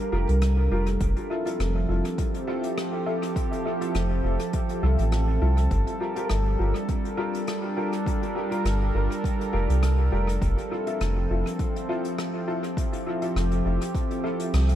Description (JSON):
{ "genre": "ambient dub", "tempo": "102 BPM", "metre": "4/4", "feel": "swing 54% on 16ths", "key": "unclear", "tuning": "A4 = 441 Hz", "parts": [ { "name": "warbly tape-like pad", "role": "sustained chords", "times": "0.0-14.8 s", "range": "F3 to Bb4", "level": "-29 LUFS", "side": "right 1 dB", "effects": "chorus, built-in reverb" }, { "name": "warm upright piano", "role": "stabs", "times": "0.1-14.4 s", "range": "E4 to Bb4", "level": "-32 LUFS", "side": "left 2 dB", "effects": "analog chorus, dub echo" }, { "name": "soft dub sub bass", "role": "bass", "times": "0.1-14.8 s", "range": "F1 to C2", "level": "-22 LUFS", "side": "equal", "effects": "tube saturation" }, { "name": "jazz brush drum kit", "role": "drums", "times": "0.3-14.8 s", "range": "hi-hat, rim click", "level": "-39 LUFS", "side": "left 2 dB", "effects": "dub echo" }, { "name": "electronic kick drum", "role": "drums", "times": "1.0-14.1 s", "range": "none", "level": "-28 LUFS", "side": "equal", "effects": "overdrive" } ], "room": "light reverb, small room ambience", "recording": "faint mains hum", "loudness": "-23 LUFS", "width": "side -11 dB against mid", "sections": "0.0-14.8 A section", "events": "band accent 14.5", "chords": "0.0 Gm7; 1.0 Fmaj7; 5.7 Gm7; 10.4 Fmaj7", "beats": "0.42 | 1.00 1.59 2.18 2.77 | 3.36 3.95 4.53 5.12 | 5.71 6.30 6.89 7.47 | 8.06 8.65 9.24 9.83 | 10.42 11.00 11.59 12.18 | 12.77 13.36 13.95 14.53" }